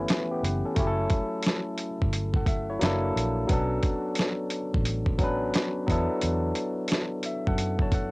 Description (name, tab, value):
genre	lo-fi hip hop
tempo	88 BPM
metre	4/4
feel	swing 64% on 16ths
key	B minor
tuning	A4 = 443 Hz
part	barky tine electric piano	accompaniment	0.0-8.1 s	E3 to A5	-28 LUFS	left 1 dB	cassette tape
part	vintage muted fingered electric bass	bass	0.0-8.1 s	F#1 to F#2	-30 LUFS	equal	none
part	dusty soul sampler-style drum kit	drums	0.1-8.1 s	hi-hat, kick drum, snare drum	-26 LUFS	equal	overdrive, cassette tape
room	light reverb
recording	home recording on cassette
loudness	-24 LUFS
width	side -26 dB against mid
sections	0.0-8.1 A section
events	none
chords	0.0 A9; 0.8 F#m7; 2.8 F#7alt; 3.5 Bm9; 5.9 E9sus4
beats	0.09 | 0.77 1.45 2.13 2.81 | 3.49 4.18 4.86 5.54 | 6.22 6.90 7.58